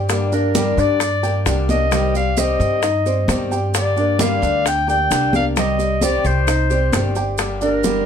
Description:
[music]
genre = latin, Cuban son and guajira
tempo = 132 BPM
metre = 4/4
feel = straight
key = G minor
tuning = A4 = 440 Hz
[part]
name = picked old ladder-braced acoustic guitar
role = accompaniment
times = 0.0-8.1 s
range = C3 to G4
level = -23 LUFS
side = left 4 dB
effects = none
[part]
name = dark concert grand piano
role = arpeggios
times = 0.0-8.0 s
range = G3 to G5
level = -24 LUFS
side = right 2 dB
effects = none
[part]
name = upright bass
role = bass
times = 0.0-8.0 s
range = G1 to G2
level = -21 LUFS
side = right 1 dB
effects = none
[part]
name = bongos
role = percussion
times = 0.1-8.1 s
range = none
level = -24 LUFS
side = left 8 dB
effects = none
[part]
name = congas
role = percussion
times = 0.1-8.1 s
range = none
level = -26 LUFS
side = equal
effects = none
[part]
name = maracas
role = percussion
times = 0.1-8.1 s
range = none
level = -29 LUFS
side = right 10 dB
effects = none
[part]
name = warm clarinet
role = melody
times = 0.3-8.1 s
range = Bb4 to G5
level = -20 LUFS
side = left 2 dB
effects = none
[sound]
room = light reverb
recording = none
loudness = -15 LUFS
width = side -8 dB against mid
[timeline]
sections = 0.0-8.1 A section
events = none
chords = 0.1 Gm; 1.9 Cm; 3.7 Gm; 5.6 Cm; 7.4 Gm

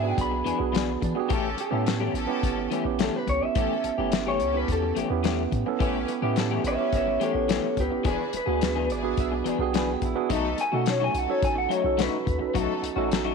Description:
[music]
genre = straight-eighth soul blues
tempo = 107 BPM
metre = 4/4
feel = straight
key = unclear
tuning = A4 = 440 Hz
[part]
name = electric guitar through a small old amp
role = melody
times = 0.0-12.5 s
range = G4 to B5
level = -27 LUFS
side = left 1 dB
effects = none
[part]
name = tine electric piano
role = accompaniment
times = 0.0-13.3 s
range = B3 to A4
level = -29 LUFS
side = right 12 dB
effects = overdrive
[part]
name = clear symphonic string section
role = sustained chords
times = 0.0-13.3 s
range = B3 to B4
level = -36 LUFS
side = left 2 dB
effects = none
[part]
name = electric guitar through a small old amp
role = stabs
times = 0.0-13.3 s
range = E3 to G#4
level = -31 LUFS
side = left 12 dB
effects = analog chorus, slapback echo
[part]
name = punchy sub bass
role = bass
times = 0.0-13.3 s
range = E1 to E3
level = -31 LUFS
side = left 1 dB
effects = none
[part]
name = warm soul drum kit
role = drums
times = 0.2-13.3 s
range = hi-hat, kick drum, snare drum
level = -29 LUFS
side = left 5 dB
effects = none
[part]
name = electric guitar through a small old amp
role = second line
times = 1.0-2.1, 8.9-10.6 s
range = D4 to E5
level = -36 LUFS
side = right 8 dB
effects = none
[sound]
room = moderate echo chamber reverb, RT60 1.7 s, small room ambience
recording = 1960s-style stereo with parts hard left and right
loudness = -23 LUFS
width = side -5 dB against mid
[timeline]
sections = 0.0-13.3 A section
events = none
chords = 0.0 E7; 1.3 A7; 8.1 E7; 10.3 B7

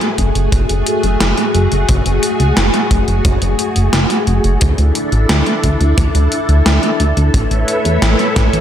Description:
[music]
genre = synthwave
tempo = 88 BPM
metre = 4/4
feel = straight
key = F# minor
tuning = A4 = 439 Hz
[part]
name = string machine, full ensemble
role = sustained chords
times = 0.0-8.6 s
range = A3 to E5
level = -17 LUFS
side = left 1 dB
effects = ensemble chorus, sidechain pumping
[part]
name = gated 80s digital drum machine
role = drums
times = 0.0-8.6 s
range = hi-hat, snare drum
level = -17 LUFS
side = right 1 dB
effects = gated reverb, gated reverb snare
[part]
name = chorused synth bass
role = bass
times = 0.2-8.6 s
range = F#1 to E2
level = -14 LUFS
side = equal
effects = none
[part]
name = kick drum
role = drums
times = 0.2-8.5 s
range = none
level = -18 LUFS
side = equal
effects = none
[sound]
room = light reverb, small room ambience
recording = none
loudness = -11 LUFS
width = side -10 dB against mid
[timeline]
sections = 0.0-8.6 A section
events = none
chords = 0.0 F#madd9; 4.6 Dsus2; 7.3 Aadd9

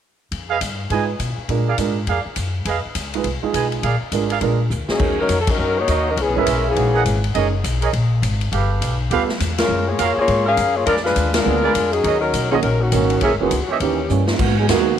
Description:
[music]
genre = jazz, big band swing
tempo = 205 BPM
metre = 4/4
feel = swing 62% on 8ths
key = Eb minor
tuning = A4 = 440 Hz
[part]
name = upright bass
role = bass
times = 0.3-15.0 s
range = Fb1 to Cb3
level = -22 LUFS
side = left 1 dB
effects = none
[part]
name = swinging big-band drum kit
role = drums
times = 0.3-14.8 s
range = crash cymbal, hi-hat, kick drum, ride cymbal, snare drum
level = -25 LUFS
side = left 2 dB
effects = none
[part]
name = mellow trumpet section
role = stabs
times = 0.5-13.8 s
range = Gb4 to Ab5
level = -24 LUFS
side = right 7 dB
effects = none
[part]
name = warm grand piano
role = accompaniment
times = 0.9-9.3, 11.5-14.9 s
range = D3 to Cb5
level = -23 LUFS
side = right 10 dB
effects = none
[part]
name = mellow saxophone section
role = melody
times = 4.9-7.2, 9.6-14.1 s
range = Eb3 to F5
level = -19 LUFS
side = left 3 dB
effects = none
[part]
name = warm trombone section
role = second line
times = 14.1-15.0 s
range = D#3 to G#4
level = -20 LUFS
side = right 10 dB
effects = none
[sound]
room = light reverb, small room ambience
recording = 1960s-style stereo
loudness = -16 LUFS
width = side -9 dB against mid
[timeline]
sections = 0.3-5.0 A section; 5.0-14.4 B section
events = drum fill 4.7, 14.1; band accent 5.4, 9.5, 11.3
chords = 0.3 Fm7b5; 1.5 Bb7; 2.7 Fm7b5; 3.8 Bb7; 5.0 Ebm7; 6.2 Dbm7; 6.8 Gb13; 7.3 Bmaj13; 8.5 G9; 9.7 Gbmaj9; 10.9 Bb7b9; 12.0 Ebm7; 13.2 Bbm7b5; 13.8 Eb7b9; 14.4 G#m9

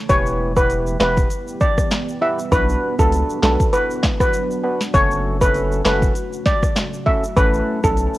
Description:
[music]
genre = dancehall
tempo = 99 BPM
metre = 4/4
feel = swing 56% on 16ths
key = B minor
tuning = A4 = 440 Hz
[part]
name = deep dark ambient pad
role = sustained chords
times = 0.0-8.2 s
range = C#3 to G4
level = -29 LUFS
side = right 1 dB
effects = chorus, built-in reverb, sidechain pumping, cassette tape
[part]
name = steel pan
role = melody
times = 0.1-7.9 s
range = A4 to E5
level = -20 LUFS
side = equal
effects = cassette tape
[part]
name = percussive organ stab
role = accompaniment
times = 0.1-8.2 s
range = A3 to B4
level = -24 LUFS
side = equal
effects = chorus, sidechain pumping, cassette tape
[part]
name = punchy sub bass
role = bass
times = 0.1-8.1 s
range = E1 to C#2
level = -22 LUFS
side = equal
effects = none
[part]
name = afro-pop drum kit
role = drums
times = 0.1-8.1 s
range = handclaps, hi-hat, kick drum, rim click, snare drum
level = -19 LUFS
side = equal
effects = vintage 12-bit sampler grit, cassette tape
[part]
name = egg shaker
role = percussion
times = 0.1-8.2 s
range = none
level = -38 LUFS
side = equal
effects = none
[sound]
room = studio reverb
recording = home recording on cassette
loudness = -16 LUFS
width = side -17 dB against mid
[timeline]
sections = 0.0-8.2 A section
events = none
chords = 0.1 Em; 2.5 Bm; 4.9 F#m; 7.4 A

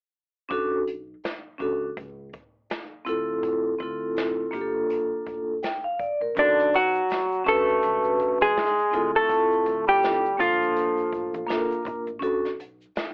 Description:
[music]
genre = hip hop, jazz-hop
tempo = 82 BPM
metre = 4/4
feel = swing 58% on 16ths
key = unclear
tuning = A4 = 441 Hz
[part]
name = vibraphone with soft mallets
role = accompaniment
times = 0.5-12.5 s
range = Bb3 to G5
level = -28 LUFS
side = equal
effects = cassette tape
[part]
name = upright bass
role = bass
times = 0.5-12.8 s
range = G1 to D2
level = -45 LUFS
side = equal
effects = none
[part]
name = jazz brush drum kit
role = drums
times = 0.5-13.1 s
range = hi-hat, kick drum, snare drum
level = -37 LUFS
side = equal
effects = none
[part]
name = hollow-body jazz guitar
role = melody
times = 6.4-11.8 s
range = D4 to A4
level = -25 LUFS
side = equal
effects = cassette tape
[part]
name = trombone with metal mute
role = second line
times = 6.4-11.8 s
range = D3 to A3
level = -31 LUFS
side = equal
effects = cassette tape
[part]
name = tube shaker and congas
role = percussion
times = 6.4-13.1 s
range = none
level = -46 LUFS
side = equal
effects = none
[sound]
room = light reverb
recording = home recording on cassette, telephone sound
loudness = -25 LUFS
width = mono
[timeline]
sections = 0.5-6.4 A section; 6.4-13.1 B section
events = none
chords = 0.5 Bm9; 3.1 Dm9; 4.5 Gm9; 6.4 Bm9; 8.9 Dm9; 10.4 Gm9; 12.2 Bm9

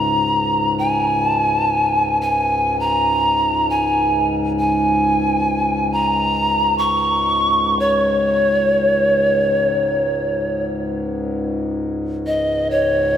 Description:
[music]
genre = world meditative, free-time meditation music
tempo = free time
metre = none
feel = none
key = unclear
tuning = A4 = 440 Hz
[part]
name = breathy bright pan flute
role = melody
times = 0.0-13.2 s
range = Db5 to Db6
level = -16 LUFS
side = equal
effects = tape echo
[part]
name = pedal harmonium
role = drone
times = 0.0-13.2 s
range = Db2 to Ab2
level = -22 LUFS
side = left 1 dB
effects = none
[sound]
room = wet lush hall reverb, RT60 2.8 s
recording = dreamy mix soaked in reverb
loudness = -16 LUFS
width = side -9 dB against mid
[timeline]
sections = 0.0-13.2 A section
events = none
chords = none

